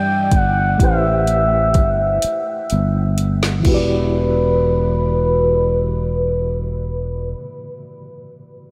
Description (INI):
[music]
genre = slow six-eight R&B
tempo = 42 BPM (dotted quarters)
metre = 6/8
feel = straight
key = E minor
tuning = A4 = 440 Hz
[part]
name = gliding portamento lead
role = melody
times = 0.0-7.3 s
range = B4 to G5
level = -22 LUFS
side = equal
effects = chorus, low-pass filter
[part]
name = bright reed electric piano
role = accompaniment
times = 0.0-8.7 s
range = E3 to D5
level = -28 LUFS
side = equal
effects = fast tremolo, low-pass filter
[part]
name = sustaining fretless electric bass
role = bass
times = 0.0-7.3 s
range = E1 to G2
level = -22 LUFS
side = equal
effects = analog chorus
[part]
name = smooth R&B drum kit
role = drums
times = 0.3-3.9 s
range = crash cymbal, hi-hat, kick drum, snare drum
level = -21 LUFS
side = equal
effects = none
[sound]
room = wet huge ambient reverb, RT60 8.0 s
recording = dreamy mix soaked in reverb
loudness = -17 LUFS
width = mono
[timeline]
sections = 0.0-3.6 A section; 3.6-6.5 B section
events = filter sweep 0.0-3.6; drum fill 2.2-3.6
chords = 0.0 Em7; 0.8 Am9; 3.6 Em9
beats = | 0.79 2.22 | 3.65 5.08